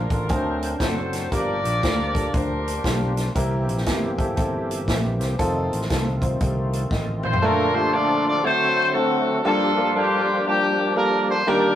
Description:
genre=uptempo gospel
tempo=118 BPM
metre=4/4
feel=swing 63% on 8ths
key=unclear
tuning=A4 = 440 Hz
part: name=clear horn section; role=melody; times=0.0-3.3, 7.2-11.8 s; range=Bb3 to D5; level=-22 LUFS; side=left 1 dB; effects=none
part: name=clear concert grand piano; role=accompaniment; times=0.0-11.8 s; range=G2 to A5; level=-26 LUFS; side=equal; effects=none
part: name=bright tonewheel organ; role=sustained chords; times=0.0-11.8 s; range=D3 to D5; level=-27 LUFS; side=equal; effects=fast rotary speaker, overdrive, chorus vibrato
part: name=fingered electric bass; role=bass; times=0.0-7.3 s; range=F1 to D2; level=-26 LUFS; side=equal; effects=none
part: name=swinging big-band drum kit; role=drums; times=0.1-7.4 s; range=hi-hat, kick drum, snare drum, toms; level=-26 LUFS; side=equal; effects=none
room=moderate studio reverb, RT60 0.6 s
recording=rough rehearsal-room recording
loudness=-19 LUFS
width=side -11 dB against mid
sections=0.0-7.4 A section; 7.4-11.8 B section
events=grand piano fill 6.7-7.4; drum fill 6.9-7.4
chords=0.3 D7; 1.3 Gm7; 3.4 C7; 5.4 F7; 7.4 Bbmaj7; 8.4 D7; 9.4 Gm7

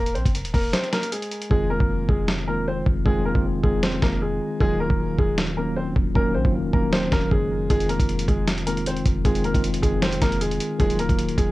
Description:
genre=hip hop, trap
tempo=155 BPM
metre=4/4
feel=half-time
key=F phrygian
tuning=A4 = 439 Hz
part: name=clear baby grand piano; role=melody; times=0.0-11.5 s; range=Ab3 to C5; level=-26 LUFS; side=equal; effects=low-pass filter, cassette tape
part: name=clean 808-style bass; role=bass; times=0.0-11.5 s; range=Db1 to Bb1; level=-26 LUFS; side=equal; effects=none
part: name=dusty soul sampler-style drum kit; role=drums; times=0.1-11.5 s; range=hi-hat, kick drum, snare drum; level=-23 LUFS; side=equal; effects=none
part: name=mellow tine electric piano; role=accompaniment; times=1.5-11.5 s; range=Eb3 to F4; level=-26 LUFS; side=equal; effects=medium stereo tremolo, low-pass filter, cassette tape
room=little or no reverb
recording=home recording on cassette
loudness=-20 LUFS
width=side -18 dB against mid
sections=0.0-11.5 A section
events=break 0.7-1.5; hi-hats muted 1.5-7.7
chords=0.0 Ebm; 1.5 Fm7; 4.6 Ebmadd9; 7.7 Fm7; 10.8 Ebmadd9

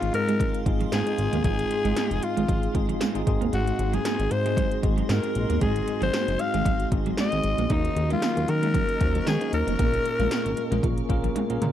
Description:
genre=1980s-style pop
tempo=115 BPM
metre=4/4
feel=swing 55% on 16ths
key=unclear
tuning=A4 = 440 Hz
part: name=raspy alto saxophone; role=melody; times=0.0-11.3 s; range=Eb4 to F5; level=-28 LUFS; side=left 3 dB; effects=none
part: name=bell-like tine electric piano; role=accompaniment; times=0.0-11.7 s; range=Ab2 to C5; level=-29 LUFS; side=left 1 dB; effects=fast stereo tremolo
part: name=granular cloud pad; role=sustained chords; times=0.0-11.7 s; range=Gb4 to Db6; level=-36 LUFS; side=right 1 dB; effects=built-in reverb
part: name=chorused synth bass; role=bass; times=0.0-11.7 s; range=F1 to Eb3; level=-27 LUFS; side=equal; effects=none
part: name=80s electronic pad drums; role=drums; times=0.0-11.7 s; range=hi-hat, kick drum, snare drum, tambourine, toms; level=-27 LUFS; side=equal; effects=gated reverb on snare and toms
part: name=electric guitar at the edge of break-up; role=riff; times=0.1-11.5 s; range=F3 to Eb4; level=-31 LUFS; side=right 7 dB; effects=ensemble chorus
room=little or no reverb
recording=dry, close 1970s-style studio recording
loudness=-22 LUFS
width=side -11 dB against mid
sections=0.0-11.7 A section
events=drum fill 11.4-11.7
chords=0.0 Fm7/Ab; 3.3 Ab7; 7.7 Ebm7; 9.8 Bbm7

